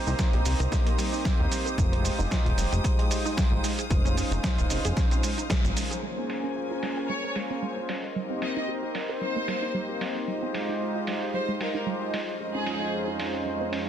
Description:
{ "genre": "nu-disco, nu disco", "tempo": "113 BPM", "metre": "4/4", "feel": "swing 55% on 16ths", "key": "Bb dorian", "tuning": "A4 = 442 Hz", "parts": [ { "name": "warm analog pad", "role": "accompaniment", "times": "0.0-13.9 s", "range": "F2 to C5", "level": "-31 LUFS", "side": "right 1 dB", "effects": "chorus, ping-pong delay" }, { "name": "warm studio string section", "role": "sustained chords", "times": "0.0-13.9 s", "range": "F3 to Eb6", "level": "-37 LUFS", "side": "left 4 dB", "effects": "sidechain pumping" }, { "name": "wide unison pluck", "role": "arpeggios", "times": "0.1-13.8 s", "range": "G3 to Bb4", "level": "-36 LUFS", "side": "right 3 dB", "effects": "sidechain pumping, tape echo" }, { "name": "chorused synth bass", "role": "bass", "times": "0.1-5.7 s", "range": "Eb1 to Eb2", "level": "-27 LUFS", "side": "equal", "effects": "sidechain pumping" }, { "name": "dusty soul sampler-style drum kit", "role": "drums", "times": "0.1-13.8 s", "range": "cabasa, hi-hat, snare drum", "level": "-34 LUFS", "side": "right 1 dB", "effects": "low-pass filter on hats, low-pass filter on perc, low-pass filter on snare" }, { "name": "electronic kick drum", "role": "drums", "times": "0.2-5.6 s", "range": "none", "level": "-26 LUFS", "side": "equal", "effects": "none" }, { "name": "warm symphonic violin section", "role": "melody", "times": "7.1-13.1 s", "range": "Ab4 to Eb5", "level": "-34 LUFS", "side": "left 1 dB", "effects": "tape echo" } ], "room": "light reverb", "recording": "dense, heavily limited modern master", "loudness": "-25 LUFS", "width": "side -10 dB against mid", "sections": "0.0-6.0 A section; 6.0-13.9 B section", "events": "band accent 5.5", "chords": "0.0 Cm7; 1.8 Fm9; 3.6 Dbmaj9; 6.0 Bbm9; 7.9 Cm7; 10.3 Fm9; 12.1 Dbmaj9/F" }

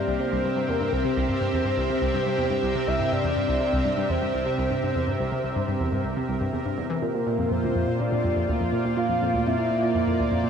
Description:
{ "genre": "ambient, sequencer-driven space music", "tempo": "123 BPM", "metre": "4/4", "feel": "straight", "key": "Bb lydian", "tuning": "A4 = 439 Hz", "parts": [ { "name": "soft octave-layered synth lead", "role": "melody", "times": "0.0-10.4 s", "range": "Bb4 to F5", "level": "-28 LUFS", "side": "left 1 dB", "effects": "chorus, tremolo, tape echo" }, { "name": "lush unison pad", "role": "sustained chords", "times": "0.0-10.5 s", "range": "Bb2 to E5", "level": "-26 LUFS", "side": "right 1 dB", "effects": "chorus" }, { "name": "analog pluck", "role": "riff", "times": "0.0-10.5 s", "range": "C2 to E3", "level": "-28 LUFS", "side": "left 1 dB", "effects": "chorus, tape echo" }, { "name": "bubbling stepped-filter texture", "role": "texture", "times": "0.0-10.5 s", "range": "Bb4 to C5", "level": "-38 LUFS", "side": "right 2 dB", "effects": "chorus, built-in reverb" } ], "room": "wet plate reverb, RT60 3.3 s", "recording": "dark, warm production", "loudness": "-22 LUFS", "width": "side -7 dB against mid", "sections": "0.0-7.0 A section; 7.0-10.5 B section", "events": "none", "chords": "0.0 C; 7.0 Bb" }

